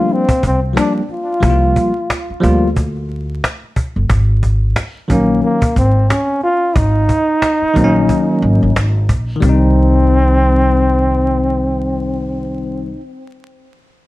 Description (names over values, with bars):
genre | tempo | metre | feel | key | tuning
hip hop, jazz-hop | 90 BPM | 4/4 | swing 60% on 16ths | C minor | A4 = 440 Hz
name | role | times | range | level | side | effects
breathy trombone | melody | 0.0-12.9 s | Bb3 to F4 | -17 LUFS | equal | plate reverb, analog delay
bell-like tine electric piano | accompaniment | 0.0-13.0 s | Eb3 to F4 | -16 LUFS | left 2 dB | auto-pan, plate reverb
upright bass | bass | 0.0-12.9 s | G1 to D2 | -15 LUFS | equal | none
cajon | drums | 0.1-9.6 s | none | -18 LUFS | equal | none
room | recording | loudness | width
moderate studio reverb, RT60 0.6 s | dark, warm production, vinyl crackle | -12 LUFS | side -18 dB against mid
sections
0.0-9.4 A section; 9.4-12.1 B section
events
none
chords
0.0 C9sus4; 4.1 Ab9sus4; 9.4 Cm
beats
0.09 0.76 | 1.42 2.09 2.76 3.42 | 4.09 4.76 5.42 6.09 | 6.76 7.42 8.09 8.76 | 9.42 10.09 10.76 11.42